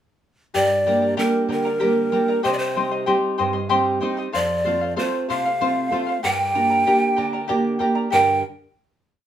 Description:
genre	andean folk, Andean ensemble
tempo	63 BPM (dotted quarters)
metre	6/8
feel	straight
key	G minor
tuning	A4 = 440 Hz
part	charango	accompaniment	0.5-8.4 s	G4 to C6	-23 LUFS	left 2 dB	none
part	nylon-string guitar	accompaniment	0.5-8.4 s	F2 to D5	-24 LUFS	right 3 dB	none
part	breathy large pan pipes	melody	0.6-8.4 s	Bb4 to G5	-21 LUFS	equal	none
room	moderate studio reverb, RT60 0.5 s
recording	minimal, uncompressed stereo recording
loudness	-18 LUFS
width	side -10 dB against mid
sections	0.6-8.1 A section; 8.1-9.3 final chord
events	none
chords	0.6 Gm; 2.4 Cm; 4.3 F; 6.2 Gm

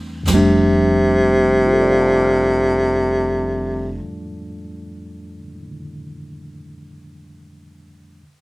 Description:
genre	jazz ballad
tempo	44 BPM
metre	4/4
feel	swing 68% on 8ths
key	F major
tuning	A4 = 440 Hz
part	mellow tine electric piano	accompaniment	0.0-8.2 s	F2 to F6	-21 LUFS	equal	medium stereo tremolo
part	upright bass	bass	0.0-4.0 s	F1 to E2	-27 LUFS	equal	none
part	clear tenor saxophone	melody	0.3-4.0 s	C3	-16 LUFS	equal	none
part	jazz brush drum kit	drums	0.3-0.7 s	crash cymbal, kick drum, snare drum	-24 LUFS	equal	none
room	little or no reverb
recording	recorded outdoors, with no room sound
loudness	-14 LUFS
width	side -21 dB against mid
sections	0.3-5.7 A section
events	none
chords	0.3 F69

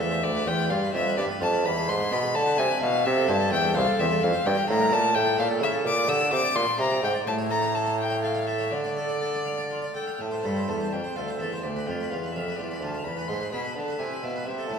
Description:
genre	classical, baroque-style sonata movement with continuo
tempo	85 BPM (dotted quarters)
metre	6/8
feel	straight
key	A minor, D minor from 4.4 s, A minor from 10.2 s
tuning	A4 = 440 Hz
part	warm violin	melody	0.0-14.8 s	D5 to E6	-27 LUFS	left 3 dB	none
part	harpsichord	accompaniment	0.0-14.8 s	C2 to F5	-29 LUFS	right 1 dB	none
part	clear bassoon	bass	0.0-14.8 s	C2 to D3	-28 LUFS	right 2 dB	none
room	wet scoring stage reverb, RT60 1.8 s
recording	heard from further back in the room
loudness	-23 LUFS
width	side -6 dB against mid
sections	0.0-10.2 A section; 10.2-14.8 A section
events	none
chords	0.2 Bdim/D; 1.6 E; 2.3 E5; 3.0 Am; 4.4 Edim/G; 5.1 A; 5.8 Gm/Bb; 6.6 Bb7; 7.3 A; 8.7 Dm; 10.2 Am; 10.9 F; 11.6 Bdim/D; 13.0 E; 13.7 E5

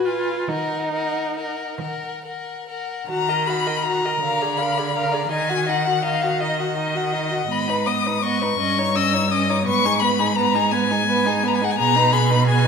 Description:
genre	classical, slow romantic movement for string quartet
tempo	44-58 BPM (dotted quarters)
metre	6/8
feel	rubato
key	Eb minor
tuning	A4 = 440 Hz
part	rich violin	melody	0.0-12.7 s	Eb5 to Fb6	-22 LUFS	left 7 dB	none
part	rich violin	second line	0.0-12.7 s	G#4 to Gb5	-26 LUFS	equal	none
part	warm viola	accompaniment	0.0-12.7 s	Cb4 to Bb4	-25 LUFS	right 2 dB	none
part	rich cello	bass	0.0-12.7 s	G2 to Eb3	-24 LUFS	right 3 dB	none
room	moderate recital hall reverb, RT60 1.6 s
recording	minimal, uncompressed stereo recording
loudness	-18 LUFS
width	side -6 dB against mid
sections	0.0-3.1 A section; 3.1-12.7 B section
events	none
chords	0.5 Ebm; 4.2 Bb7/D; 5.3 Ebm; 7.5 Abm; 8.6 Eb7/G; 9.7 Abm; 11.8 G#m/B

